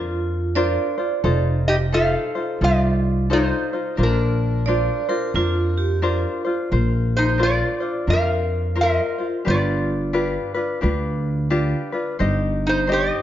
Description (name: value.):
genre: Hawaiian.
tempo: 88 BPM.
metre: 4/4.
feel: swing 62% on 8ths.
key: Bb major.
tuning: A4 = 437 Hz.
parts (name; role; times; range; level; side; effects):
vibraphone with hard mallets; second line; 0.0-6.7 s; F4 to D5; -25 LUFS; right 7 dB; none.
tenor ukulele; accompaniment; 0.0-13.2 s; D4 to Eb5; -25 LUFS; left 3 dB; none.
upright bass; bass; 0.0-13.1 s; F1 to F2; -21 LUFS; equal; none.
metal-body resonator slide guitar; melody; 1.7-13.2 s; D4 to F5; -22 LUFS; equal; none.
room: moderate recital hall reverb, RT60 1.5 s.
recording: dark, warm production, nothing above 7.6 kHz.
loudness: -18 LUFS.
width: side -11 dB against mid.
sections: 0.0-6.7 A section; 6.7-13.2 A section.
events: none.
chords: 0.0 Bbadd9; 1.2 F7; 4.0 Bbadd9; 9.5 G7; 12.2 Cm/G.